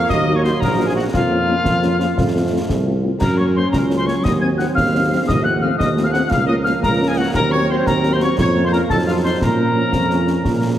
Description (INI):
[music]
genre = military-style march for wind band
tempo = 116 BPM (dotted quarters)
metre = 6/8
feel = straight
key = Bb minor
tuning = A4 = 438 Hz
[part]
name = mellow trumpet section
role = melody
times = 0.0-10.8 s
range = F4 to Ab5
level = -24 LUFS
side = equal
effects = none
[part]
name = bright piccolo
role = second line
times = 0.0-10.8 s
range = F5 to Ab6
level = -23 LUFS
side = left 3 dB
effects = none
[part]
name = warm trombone section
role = sustained chords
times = 0.0-10.8 s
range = F3 to Eb4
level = -23 LUFS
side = right 2 dB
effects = none
[part]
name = warm tuba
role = bass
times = 0.1-10.8 s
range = Bb1 to Bb2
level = -19 LUFS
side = right 1 dB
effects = none
[part]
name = concert snare drum, concert bass drum and clash cymbals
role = drums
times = 0.1-10.8 s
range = none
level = -24 LUFS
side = equal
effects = none
[part]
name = dark French horn section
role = accompaniment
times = 0.3-10.7 s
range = Gb3 to Gb4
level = -25 LUFS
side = left 2 dB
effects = none
[sound]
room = wet scoring stage reverb, RT60 2.1 s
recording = heavily compressed radio sound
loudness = -15 LUFS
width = side -11 dB against mid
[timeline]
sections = 0.0-10.8 A section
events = none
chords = 0.1 Ebm; 1.1 Bbm/F; 2.2 F; 3.2 Gb; 4.2 Cdim/Eb; 5.3 F7/Eb; 6.3 Bbm/Db; 7.3 Cm7b5/Eb; 8.4 Bbm/F; 8.9 F5; 9.4 Bbm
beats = | 0.10 0.62 | 1.14 1.66 | 2.17 2.69 | 3.21 3.73 | 4.24 4.76 | 5.28 5.79 | 6.31 6.83 | 7.35 7.86 | 8.38 8.90 | 9.41 9.93 | 10.45